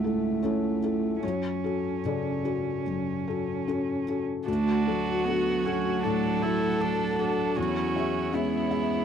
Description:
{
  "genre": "neoclassical piano and strings",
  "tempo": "73-79 BPM",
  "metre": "4/4",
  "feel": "rubato",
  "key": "unclear",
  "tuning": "A4 = 439 Hz",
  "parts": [
    { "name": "dark cello", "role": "second line", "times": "0.0-9.0 s", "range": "F#3 to C#4", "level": "-31 LUFS", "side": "right 9 dB", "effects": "none" },
    { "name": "felt-muted upright piano", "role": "accompaniment", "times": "0.0-9.0 s", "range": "C#2 to F#5", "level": "-28 LUFS", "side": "left 6 dB", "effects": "none" },
    { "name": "dark violin", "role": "melody", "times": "4.5-9.0 s", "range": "E4 to A4", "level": "-30 LUFS", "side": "left 1 dB", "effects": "tape echo" },
    { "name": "rich viola", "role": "accompaniment", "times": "4.5-9.0 s", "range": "B3 to E4", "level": "-32 LUFS", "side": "right 6 dB", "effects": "none" },
    { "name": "warm symphonic string section", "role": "sustained chords", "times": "4.5-9.0 s", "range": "A3 to F#5", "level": "-38 LUFS", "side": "right 3 dB", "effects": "none" }
  ],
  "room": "small room ambience",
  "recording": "dry, close 1970s-style studio recording",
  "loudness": "-25 LUFS",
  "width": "side -8 dB against mid",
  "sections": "0.0-4.5 A section; 4.5-9.0 B section",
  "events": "none",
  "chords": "0.0 F#m7; 1.2 Dmaj7/F#; 4.5 D; 7.6 E6",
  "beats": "0.42 | 1.23 2.04 2.86 3.67 | 4.47 5.26 6.03 6.80 | 7.57 8.33"
}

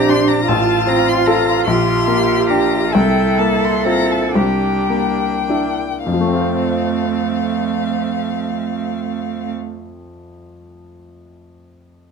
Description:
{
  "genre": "classical, slow romantic movement for piano quartet",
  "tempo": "33-52 BPM (dotted quarters)",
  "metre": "6/8",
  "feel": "rubato",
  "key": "F major",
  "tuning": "A4 = 439 Hz",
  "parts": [
    { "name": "warm violin", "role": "melody", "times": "0.0-9.5 s", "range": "F5 to C6", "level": "-22 LUFS", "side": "left 7 dB", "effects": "none" },
    { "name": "warm cello", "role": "second line", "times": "0.0-9.5 s", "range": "A3 to A4", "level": "-20 LUFS", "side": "right 8 dB", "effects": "none" },
    { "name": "bright grand piano", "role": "accompaniment", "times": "0.0-12.1 s", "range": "A1 to C5", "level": "-18 LUFS", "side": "left 3 dB", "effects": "none" },
    { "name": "rich viola", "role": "accompaniment", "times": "0.0-9.5 s", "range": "C4 to G4", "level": "-22 LUFS", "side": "right 4 dB", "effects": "none" }
  ],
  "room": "light reverb",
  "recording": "none",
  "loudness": "-14 LUFS",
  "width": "side -5 dB against mid",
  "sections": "0.0-6.1 A section; 6.1-9.3 B section",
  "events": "slowing down 0.0-6.1",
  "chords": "0.5 F/A; 1.7 Gm/Bb; 2.9 C7sus4; 4.4 C9; 6.1 F",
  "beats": "| 0.47 1.66 | 2.93 4.35 | 6.06 7.64"
}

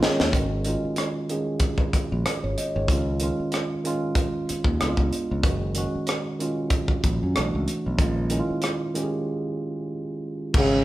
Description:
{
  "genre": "R&B, neo-soul",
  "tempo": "94 BPM",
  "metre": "4/4",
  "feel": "swing 54% on 16ths",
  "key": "G# dorian",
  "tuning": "A4 = 437 Hz",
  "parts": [
    { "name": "tine electric piano", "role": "accompaniment", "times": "0.0-10.8 s", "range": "D#3 to F#5", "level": "-27 LUFS", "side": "right 2 dB", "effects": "none" },
    { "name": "tight funk drum kit", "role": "drums", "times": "0.0-10.7 s", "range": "crash cymbal, hi-hat, kick drum, rim click, snare drum", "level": "-24 LUFS", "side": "equal", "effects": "none" },
    { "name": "modern bright fingered electric bass", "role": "bass", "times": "0.2-10.8 s", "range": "F#1 to F#2", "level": "-27 LUFS", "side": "equal", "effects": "none" },
    { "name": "mellow French horn", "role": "melody", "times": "10.6-10.8 s", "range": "C#3", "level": "-19 LUFS", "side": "equal", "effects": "none" }
  ],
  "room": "moderate large studio reverb, RT60 1.2 s",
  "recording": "band playing live in one room",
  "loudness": "-23 LUFS",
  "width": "side -16 dB against mid",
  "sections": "0.3-10.5 A section",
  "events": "drum fill 0.0-0.3; break 9.3-10.5",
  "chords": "0.3 G#7sus4; 2.9 C#; 4.8 C#7b9; 5.4 F#5; 7.4 Bm7; 8.0 A#m7",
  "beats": "| 0.33 0.97 1.61 2.25 | 2.88 3.52 4.16 4.80 | 5.44 6.07 6.71 7.35 | 7.99 8.63 9.27 9.90 | 10.54"
}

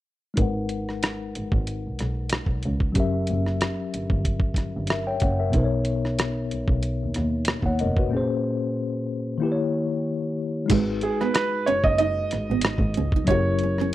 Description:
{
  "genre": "R&B, neo-soul",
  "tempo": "93 BPM",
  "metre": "4/4",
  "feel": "swing 55% on 16ths",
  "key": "unclear",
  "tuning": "A4 = 440 Hz",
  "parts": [
    { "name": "mellow tine electric piano", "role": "accompaniment", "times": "0.3-13.9 s", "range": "A#2 to G5", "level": "-26 LUFS", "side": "left 3 dB", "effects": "medium stereo tremolo, low-pass filter" },
    { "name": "warm double bass", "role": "bass", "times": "0.4-13.9 s", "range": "E#1 to D#2", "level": "-27 LUFS", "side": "equal", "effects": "none" },
    { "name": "dusty soul sampler-style drum kit", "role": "drums", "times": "0.4-13.9 s", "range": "crash cymbal, hi-hat, kick drum, rim click", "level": "-24 LUFS", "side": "equal", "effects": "none" },
    { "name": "nylon-string guitar", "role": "second line", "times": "10.7-13.9 s", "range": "G#3 to F#4", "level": "-27 LUFS", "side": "right 10 dB", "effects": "none" },
    { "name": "clear grand piano", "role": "melody", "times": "11.0-13.9 s", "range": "G#4 to D#5", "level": "-24 LUFS", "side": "right 2 dB", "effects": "none" }
  ],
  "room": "studio reverb",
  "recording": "dry, close 1970s-style studio recording",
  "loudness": "-22 LUFS",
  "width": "side -14 dB against mid",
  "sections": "0.4-10.7 A section; 10.7-13.9 B section",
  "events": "filter sweep on tine electric piano 0.4-10.7; break 8.1-10.7",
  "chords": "0.4 G#m7; 3.0 F#7b9; 5.5 Bmaj7; 8.1 A#m7; 9.4 D#7b9; 10.7 G#m7; 13.3 F#7b9",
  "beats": "| 0.38 1.02 1.67 2.31 | 2.96 3.60 4.25 4.89 | 5.54 6.18 6.83 7.47 | 8.12 8.76 9.41 10.05 | 10.70 11.34 11.99 12.63 | 13.28 13.92"
}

